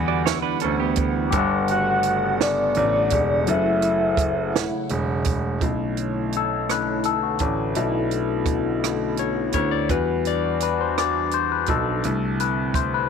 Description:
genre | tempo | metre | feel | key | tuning
slow six-eight R&B | 56 BPM (dotted quarters) | 6/8 | straight | B minor from 5.6 s | A4 = 439 Hz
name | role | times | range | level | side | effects
barky tine electric piano | accompaniment | 0.0-13.1 s | E3 to F#5 | -24 LUFS | left 13 dB | overdrive, phaser
hollow soft pad | sustained chords | 0.0-13.1 s | C#3 to F#5 | -31 LUFS | right 3 dB | chorus
warm concert grand piano | bass | 0.0-13.1 s | E1 to E2 | -25 LUFS | right 3 dB | none
semi-hollow electric guitar | second line | 0.1-1.3 s | B3 to D5 | -26 LUFS | right 18 dB | none
compact cocktail drum kit | drums | 0.3-12.9 s | hi-hat, kick drum, rim click, snare drum | -26 LUFS | right 5 dB | none
soft octave-layered synth lead | melody | 1.7-4.9 s | D5 to F#5 | -22 LUFS | left 1 dB | chorus, tremolo, slapback echo
room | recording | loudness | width
small room ambience | 1960s-style stereo with parts hard left and right | -20 LUFS | side -6 dB against mid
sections
0.0-5.6 A section; 5.6-13.1 B section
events
tine electric piano solo 5.6-13.1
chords
0.0 Em9; 1.3 Gmaj9#11; 3.5 F#m7; 5.6 Bm11; 9.9 Em9; 12.0 C69

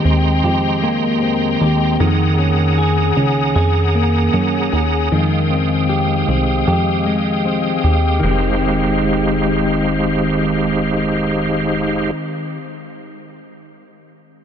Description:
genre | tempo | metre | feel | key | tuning
dream pop | 77 BPM | 4/4 | straight | F minor | A4 = 441 Hz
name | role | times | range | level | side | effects
bright tonewheel organ | sustained chords | 0.0-12.1 s | Ab3 to Eb6 | -20 LUFS | right 1 dB | chorus vibrato, fast rotary speaker
clean electric guitar | arpeggios | 0.0-12.7 s | Eb3 to Ab4 | -18 LUFS | left 1 dB | wide subtle chorus, ping-pong delay
plucky analog bass | bass | 0.1-12.1 s | F1 to Gb2 | -19 LUFS | equal | none
room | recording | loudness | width
moderate huge ambient reverb, RT60 5.3 s | none | -14 LUFS | side -8 dB against mid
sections
0.0-8.2 A section; 8.2-11.4 B section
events
none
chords
0.0 Abmaj9; 2.0 Gb69; 5.1 Fm9

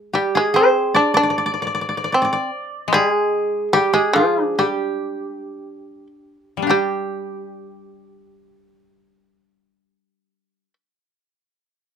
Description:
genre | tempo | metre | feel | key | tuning
japanese traditional, Japanese chamber music | 48-78 BPM | 2/4 | rubato | G in sen | A4 = 439 Hz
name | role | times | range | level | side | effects
koto | melody | 0.0-10.7 s | F4 to D5 | -19 LUFS | equal | none
koto | accompaniment | 0.0-10.7 s | G3 to G4 | -25 LUFS | left 3 dB | none
shamisen | second line | 0.1-10.7 s | F3 to D4 | -20 LUFS | equal | none
room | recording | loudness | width
light reverb | close, detailed microphones | -16 LUFS | side -7 dB against mid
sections
0.0-6.7 A section; 6.7-11.6 B section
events
slowing down 2.9-6.7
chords
none

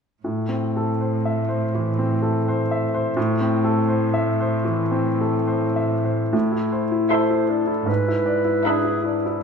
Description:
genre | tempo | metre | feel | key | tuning
classical, romantic movement for piano and orchestra | 66-85 BPM | 4/4 | rubato | A minor | A4 = 441 Hz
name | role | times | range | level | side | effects
clear baby grand piano | melody | 0.2-9.4 s | G#2 to E5 | -21 LUFS | left 2 dB | none
muted symphonic cello section | bass | 0.2-8.5 s | G#2 to A2 | -25 LUFS | right 3 dB | none
mellow clarinet | second line | 6.3-9.4 s | E4 to C5 | -24 LUFS | right 4 dB | none
muted symphonic violin section | melody | 7.1-9.2 s | B5 to C6 | -30 LUFS | left 2 dB | none
muted symphonic violin section | second line | 7.1-9.2 s | E5 | -29 LUFS | right 1 dB | none
muted symphonic viola section | accompaniment | 7.1-9.2 s | D4 to E4 | -31 LUFS | right 5 dB | none
room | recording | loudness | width
moderate scoring stage reverb, RT60 1.8 s | minimal, uncompressed stereo recording | -19 LUFS | side -6 dB against mid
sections
0.2-6.3 A section; 6.3-9.4 B section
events
none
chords
0.2 Am; 7.9 E7/G#

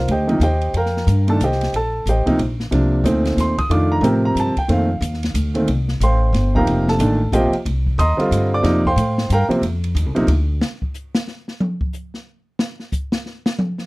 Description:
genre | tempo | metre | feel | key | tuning
modal jazz | 182 BPM | 3/4 | swing 62% on 8ths | unclear | A4 = 440 Hz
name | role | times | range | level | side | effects
warm concert grand piano | accompaniment | 0.0-10.3 s | Bb2 to Eb6 | -18 LUFS | right 1 dB | none
upright bass | bass | 0.0-10.6 s | F1 to A2 | -18 LUFS | equal | none
open jazz drum kit | drums | 0.1-13.8 s | hi-hat, kick drum, ride cymbal, snare drum, toms | -24 LUFS | equal | none
room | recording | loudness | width
little or no reverb | dry, close 1970s-style studio recording | -16 LUFS | side -23 dB against mid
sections
0.0-10.6 A section; 10.6-13.9 A section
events
drum solo 10.6-13.9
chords
0.0 F9sus4; 2.7 C9sus4; 6.7 F9sus4; 10.6 N.C.

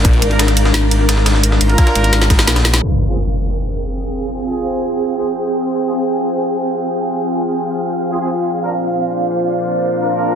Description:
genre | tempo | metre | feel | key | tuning
dark technical drum and bass | 173 BPM | 4/4 | straight | F dorian | A4 = 440 Hz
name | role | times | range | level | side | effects
metallic wobble bass | bass | 0.0-2.8 s | Ab1 to Bb1 | -14 LUFS | equal | chorus
breakbeat sampler-style drum kit | drums | 0.0-2.8 s | ride cymbal, snare drum | -22 LUFS | equal | high-pass filter on snare, high-pass filter on cymbals, high-pass filter on room
drum and bass drum kit | drums | 0.0-2.8 s | hi-hat, snare drum | -17 LUFS | equal | none
electronic kick drum | drums | 0.0-2.4 s | none | -12 LUFS | equal | none
ethereal airy pad | texture | 0.0-10.4 s | C4 to F5 | -19 LUFS | right 1 dB | ensemble chorus, built-in reverb, phaser, sidechain pumping
warm brass ensemble | stabs | 0.3-5.9, 8.1-10.4 s | C4 to Bb4 | -23 LUFS | right 2 dB | low-pass filter, digital delay
dark analog pad | sustained chords | 2.8-10.4 s | Bb3 to Ab5 | -21 LUFS | left 1 dB | chorus, sidechain pumping
impact | sound effects | 2.8-4.2 s | none | -19 LUFS | equal | none
room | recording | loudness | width
moderate lush hall reverb, RT60 2.0 s | dense, heavily limited modern master, low-pass filter | -14 LUFS | side -8 dB against mid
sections
0.0-2.8 A section; 2.8-10.4 B section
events
drum fill 2.1-2.8; band accent 2.7; impact 2.8-4.2; filter sweep 2.8-10.4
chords
0.0 Bb; 2.8 Fm; 8.4 Bb

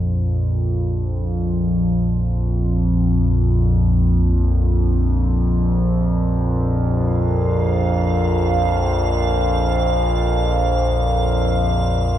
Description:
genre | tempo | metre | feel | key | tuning
dark ambient drone | free time | none | none | unclear | A4 = 440 Hz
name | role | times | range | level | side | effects
analog drone | drone | 0.0-12.2 s | Bb1 to F2 | -16 LUFS | equal | chorus
icy glass pad | texture | 7.6-12.2 s | F5 | -25 LUFS | right 4 dB | chorus, built-in reverb
room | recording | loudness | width
wet cathedral reverb, RT60 6.4 s | cassette tape | -16 LUFS | side -11 dB against mid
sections
0.0-12.2 A section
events
none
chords
0.0 Bb5

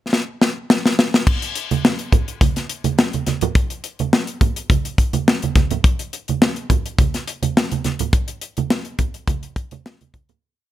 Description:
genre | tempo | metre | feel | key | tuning
funk | 105 BPM | 4/4 | straight | none | none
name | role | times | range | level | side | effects
tight funk drum kit | drums | 0.1-10.4 s | crash cymbal, hi-hat, kick drum, snare drum | -17 LUFS | left 1 dB | none
congas | percussion | 1.7-10.4 s | none | -22 LUFS | right 8 dB | none
room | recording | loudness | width
light reverb | none | -17 LUFS | side -13 dB against mid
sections
0.0-1.3 pickup bar; 1.3-10.4 breakdown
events
drum fill 0.1-1.3; fade-out 8.1-10.4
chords
none

